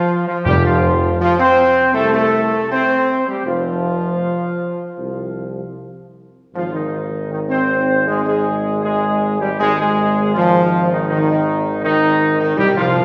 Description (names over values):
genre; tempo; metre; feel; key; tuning
classical; 79 BPM; 4/4; straight; unclear; A4 = 439 Hz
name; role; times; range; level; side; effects
mellow trumpet section; melody; 0.0-13.0 s; Eb4 to C5; -23 LUFS; equal; none
bright trombone section; sustained chords; 0.0-13.0 s; Eb3 to C4; -20 LUFS; equal; none
mellow French horn section; sustained chords; 0.0-13.0 s; Eb3 to C4; -25 LUFS; equal; none
clear tuba; bass; 0.5-13.0 s; F1 to C2; -25 LUFS; equal; none
timpani; percussion; 0.5-1.5, 12.6-13.0 s; F2 to C3; -24 LUFS; equal; none
room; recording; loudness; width
wet scoring stage reverb, RT60 2.0 s; heard from further back in the room; -17 LUFS; mono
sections
0.0-13.0 A section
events
timpani fill 12.6-13.0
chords
0.5 F5; 6.5 Ab5